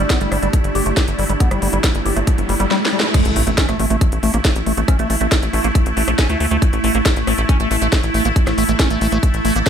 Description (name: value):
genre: psychedelic trance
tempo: 138 BPM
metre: 4/4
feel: straight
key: unclear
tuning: A4 = 440 Hz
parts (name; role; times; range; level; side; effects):
- swarming drone; sustained chords; 0.0-9.7 s; A3 to E4; -22 LUFS; right 1 dB; built-in reverb, sidechain pumping
- liquid acid bass; riff; 0.0-9.6 s; G3 to G4; -22 LUFS; moving between left 3 dB and right 4 dB; phaser, auto-pan, cassette tape, sidechain pumping, ping-pong delay
- tight sequencer bass; bass; 0.0-9.6 s; G1 to D2; -20 LUFS; equal; none
- riser and impact; sound effects; 1.4-4.9 s; none; -26 LUFS; equal; none
- warbly tape-like pad; texture; 0.0-2.7 s; D4 to D5; -28 LUFS; left 1 dB; chorus, built-in reverb, sidechain pumping
- drum and bass drum kit; drums; 0.1-9.7 s; crash cymbal, hi-hat, rim click, snare drum; -22 LUFS; equal; small room ambience
- electronic kick drum; drums; 0.1-9.7 s; none; -15 LUFS; equal; small room ambience
room: light reverb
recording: none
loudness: -14 LUFS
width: side -8 dB against mid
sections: 0.0-3.1 A section; 3.1-9.7 B section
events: riser 1.4-3.1; drum fill 2.7-3.1; band accent 3.0; drop 3.1-9.7; impact 3.1-4.9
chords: 0.0 G5; 3.1 A5